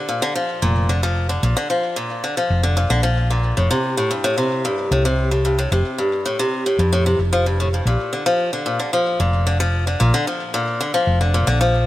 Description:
folktronica; 112 BPM; 4/4; straight; Bb major; A4 = 440 Hz
picked swing-style acoustic guitar; arpeggios; 0.0-11.9 s; G2 to F3; -19 LUFS; left 1 dB; tape echo
hollow-body short-scale fingered electric bass; bass; 0.6-11.9 s; F1 to F2; -18 LUFS; equal
light reverb, small room ambience; vinyl crackle; -17 LUFS; side -15 dB against mid
0.0-11.9 A section
0.0 Bb; 3.6 Fadd9; 7.9 Bb
0.36 0.90 | 1.43 1.97 2.50 3.04 | 3.57 4.11 4.64 5.18 | 5.72 6.25 6.79 7.32 | 7.86 8.39 8.93 9.47 | 10.00 10.54 11.07 11.61

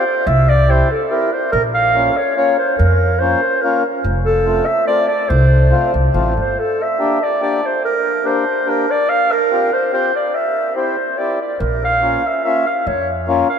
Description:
alpine folk, alpine dance band; 143 BPM; 3/4; straight; A4 = 441 Hz
mellow clarinet; melody; 0.0-13.6 s; A4 to F5; -16 LUFS; right 1 dB
mellow accordion; accompaniment; 0.0-13.5 s; A3 to G4; -21 LUFS; left 2 dB
upright bass; bass; 0.3-6.5, 11.6-13.4 s; F1 to F2; -16 LUFS; equal
wet cathedral reverb, RT60 6.7 s; in a vast, echoing space; -14 LUFS; side -7 dB against mid
0.0-6.6 A section; 6.6-13.6 A section
0.3 C; 1.5 Bbm; 4.0 F; 6.6 Gm; 9.1 Csus4; 10.3 C; 11.6 Bbm
| 0.26 0.68 1.10 | 1.52 1.95 2.37 | 2.79 3.21 3.62 | 4.04 4.46 4.88 | 5.30 5.72 6.14 | 6.56 6.99 7.41 | 7.83 8.24 8.66 | 9.08 9.50 9.92 | 10.34 10.76 11.18 | 11.61 12.03 12.45 | 12.87 13.28

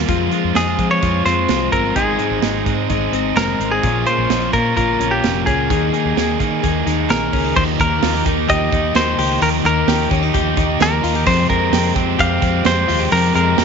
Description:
jangly indie pop; 129 BPM; 4/4; straight; A4 = 439 Hz
biting overdriven guitar; accompaniment; 0.0-13.6 s; F2 to Ab4; -21 LUFS; right 13 dB
direct-recorded clean electric guitar; arpeggios; 0.0-13.6 s; F2 to Ab4; -20 LUFS; left 11 dB; wide subtle chorus, tape echo
fingered electric bass; bass; 0.0-13.6 s; F1 to F3; -22 LUFS; equal
modern studio drum kit; drums; 0.1-13.6 s; crash cymbal, hi-hat, kick drum, snare drum; -22 LUFS; right 5 dB
direct-recorded clean electric guitar; melody; 0.6-13.6 s; G4 to F5; -19 LUFS; equal
light reverb, small room ambience; 1960s-style stereo with parts hard left and right, nothing above 7.6 kHz; -14 LUFS; side -6 dB against mid
0.0-7.6 A section; 7.6-13.6 B section
0.1 Fm; 2.0 Ab; 3.8 Bbm; 5.7 Ebsus4; 7.6 Ebadd9; 11.3 Fmadd9
| 0.09 0.55 1.02 1.49 | 1.96 2.43 2.90 3.36 | 3.83 4.30 4.77 5.23 | 5.70 6.17 6.63 7.10 | 7.56 8.03 8.49 8.96 | 9.42 9.88 10.34 10.81 | 11.27 11.73 12.20 12.66 | 13.12 13.58

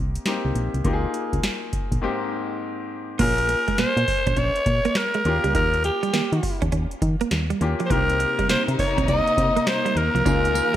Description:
R&B, new jack swing; 102 BPM; 4/4; swing 64% on 16ths; Bb dorian; A4 = 445 Hz
bright concert grand piano; accompaniment; 0.0-10.8 s; Ab2 to Ab4; -29 LUFS; left 4 dB
solid FM bass; bass; 0.0-10.6 s; Bb1 to Eb3; -24 LUFS; equal
booming analog drum machine; drums; 0.2-10.8 s; crash cymbal, hi-hat, kick drum, snare drum, tambourine; -26 LUFS; equal
breathy alto saxophone; melody; 3.2-10.8 s; G4 to Eb5; -22 LUFS; equal
direct-recorded clean electric guitar; riff; 3.2-10.8 s; F3 to Eb4; -28 LUFS; right 6 dB; analog chorus
warm studio string section; sustained chords; 7.9-10.8 s; C3 to F4; -28 LUFS; left 3 dB
moderate lush hall reverb, RT60 2.2 s; bright 1980s-style digital production; -20 LUFS; side -12 dB against mid
0.0-3.2 A section; 3.2-10.8 B section
break 2.0-3.2
0.0 Cm7; 0.8 Db69; 2.0 Abmaj9; 3.2 Bbm9; 5.3 Eb7; 7.9 Cm7; 10.3 Db69
0.26 | 0.84 1.43 2.02 2.61 | 3.20 3.79 4.37 4.96 | 5.55 6.14 6.73 7.32 | 7.90 8.49 9.08 9.67 | 10.26

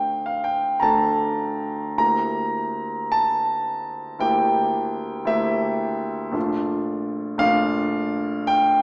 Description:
classical, romantic nocturne for solo piano; 52-57 BPM (dotted quarters); 12/8; rubato; A4 = 441 Hz
warm grand piano; solo; 0.0-8.8 s; Bb1 to Bb5; -20 LUFS; equal
wet recital hall reverb, RT60 1.7 s; heard from further back in the room, small speaker sound; -20 LUFS; side -34 dB against mid
0.0-8.8 A section
0.0 Dm; 2.0 Edim/D; 6.4 Bbmaj7
0.85 | 2.00 3.14 4.22 5.29 | 6.36 7.42 8.49

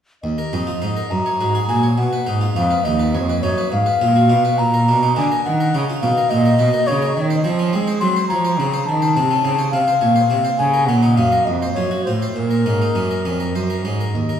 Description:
classical, baroque-style sonata movement with continuo; 69 BPM (dotted quarters); 6/8; straight; Eb minor, Bb minor from 7.2 s; A4 = 440 Hz
baroque flute; melody; 0.2-14.4 s; Bb4 to C6; -19 LUFS; left 2 dB
harpsichord; accompaniment; 0.2-14.4 s; Eb2 to Db5; -24 LUFS; right 1 dB
dark cello; bass; 0.2-14.4 s; Eb2 to Ab3; -19 LUFS; right 1 dB
wet recital hall reverb, RT60 1.9 s; heard from further back in the room; -15 LUFS; side -9 dB against mid
0.2-14.1 A section
0.2 Eb5; 1.1 Gb; 2.0 B; 3.7 Fdim/Ab; 4.6 Bb; 5.5 Eb5; 7.2 Cdim/Eb; 8.9 F7; 10.6 Bbm; 11.5 F; 12.4 Bbm
| 0.23 1.11 | 1.98 2.85 | 3.72 4.59 | 5.46 6.31 | 7.17 8.02 | 8.87 9.73 | 10.59 11.46 | 12.35 13.24 | 14.14

